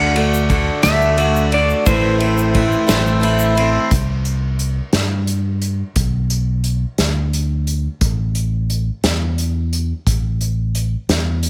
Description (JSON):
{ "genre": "folk rock and heartland rock", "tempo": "58 BPM (dotted quarters)", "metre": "6/8", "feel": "straight", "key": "unclear", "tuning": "A4 = 440 Hz", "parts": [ { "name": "clean lap steel guitar", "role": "melody", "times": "0.0-3.5 s", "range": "C5 to F#5", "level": "-22 LUFS", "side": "equal", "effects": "analog delay" }, { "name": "picked twelve-string acoustic guitar", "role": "accompaniment", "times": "0.0-3.9 s", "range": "A2 to F#4", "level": "-24 LUFS", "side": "equal", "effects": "none" }, { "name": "hand-pumped harmonium", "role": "sustained chords", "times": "0.0-3.9 s", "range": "C4 to D5", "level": "-26 LUFS", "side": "equal", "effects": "none" }, { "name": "electric guitar through a small old amp", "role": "riff", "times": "0.0-3.9 s", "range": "A2 to F#4", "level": "-24 LUFS", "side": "equal", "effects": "none" }, { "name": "fingered electric bass", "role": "bass", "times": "0.0-11.5 s", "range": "A1 to G2", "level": "-21 LUFS", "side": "equal", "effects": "none" }, { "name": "unplugged drum kit", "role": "drums", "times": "0.2-11.5 s", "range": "hi-hat, kick drum, ride cymbal, snare drum", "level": "-23 LUFS", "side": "equal", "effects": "none" }, { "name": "egg shaker", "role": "percussion", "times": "0.3-3.7 s", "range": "none", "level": "-34 LUFS", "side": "equal", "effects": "none" } ], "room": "light reverb, small room ambience", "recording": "none", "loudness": "-18 LUFS", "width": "mono", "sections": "0.0-3.9 A section; 3.9-11.5 B section", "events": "none", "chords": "0.0 D; 1.9 Am; 3.9 C5; 6.0 Bm; 8.0 A5", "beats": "0.84 | 1.86 2.88 | 3.91 4.93 | 5.96 6.99 | 8.01 9.04 | 10.07 11.09" }